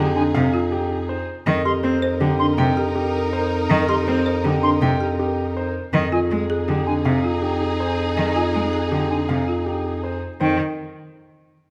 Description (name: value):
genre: classical, minimalist pattern music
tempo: 161 BPM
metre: 6/4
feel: straight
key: F dorian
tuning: A4 = 440 Hz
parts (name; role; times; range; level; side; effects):
- bright concert grand piano; melody; 0.0-10.6 s; G4 to G5; -30 LUFS; equal; none
- rich cello; accompaniment; 0.0-10.6 s; C3 to C4; -25 LUFS; equal; none
- rich symphonic string section; sustained chords; 0.0-10.2 s; Eb4 to Bb4; -30 LUFS; equal; none
- folk marimba with medium hard mallets; arpeggios; 0.0-10.6 s; D4 to C5; -28 LUFS; equal; none
- warm bass clarinet; bass; 0.0-10.6 s; F2; -26 LUFS; equal; none
- bright concert flute; arpeggios; 0.2-10.6 s; G5 to C6; -29 LUFS; equal; none
room: moderate recital hall reverb, RT60 1.7 s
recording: none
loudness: -21 LUFS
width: mono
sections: 0.0-10.4 A section; 10.4-11.7 B section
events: none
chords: 0.0 Fm9; 1.5 Cm7/F; 5.9 Fm9; 10.4 Fsus2